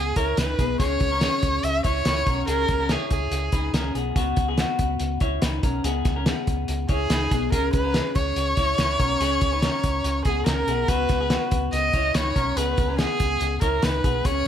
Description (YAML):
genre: jangly indie pop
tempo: 143 BPM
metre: 4/4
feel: straight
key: unclear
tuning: A4 = 440 Hz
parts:
  - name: warm violin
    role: melody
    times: 0.0-3.9, 6.9-14.5 s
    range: G#4 to E5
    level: -25 LUFS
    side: right 1 dB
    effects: none
  - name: electric guitar through a small old amp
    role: arpeggios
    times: 0.0-14.5 s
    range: B3 to C#5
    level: -27 LUFS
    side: left 3 dB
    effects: none
  - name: hollow-body short-scale fingered electric bass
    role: bass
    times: 0.0-14.4 s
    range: B1 to C#2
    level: -28 LUFS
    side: equal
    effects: none
  - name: cloth-damped thuddy drum kit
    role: drums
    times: 0.2-14.3 s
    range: hi-hat, kick drum, snare drum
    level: -25 LUFS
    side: equal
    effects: none
room: moderate studio reverb, RT60 0.5 s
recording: none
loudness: -20 LUFS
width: side -9 dB against mid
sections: 0.0-14.5 A section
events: none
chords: 0.0 G#m; 4.2 B/C#; 5.8 G#m; 10.9 B/C#; 12.6 G#m/C#